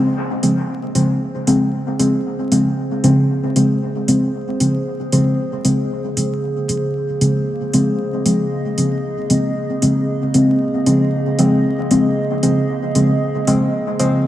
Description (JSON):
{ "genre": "dub techno", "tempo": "115 BPM", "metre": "4/4", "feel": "straight", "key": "Bb minor", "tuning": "A4 = 440 Hz", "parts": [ { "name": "warbly tape-like pad", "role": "sustained chords", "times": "0.2-14.3 s", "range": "Db3 to Eb5", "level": "-23 LUFS", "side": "right 1 dB", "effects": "chorus, built-in reverb" }, { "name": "deep mellow chord stab", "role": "stabs", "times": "0.0-14.2 s", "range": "Db3 to C4", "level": "-16 LUFS", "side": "equal", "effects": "chorus, phaser, dub echo" }, { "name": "electronic hi-hat", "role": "drums", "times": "0.4-14.1 s", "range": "none", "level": "-24 LUFS", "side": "right 1 dB", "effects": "none" } ], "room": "wet lush hall reverb, RT60 2.1 s", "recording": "vinyl crackle", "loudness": "-15 LUFS", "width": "side -13 dB against mid", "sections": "0.0-14.3 A section", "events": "filter sweep on synth stab 0.0-14.3", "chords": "0.0 Bbm9" }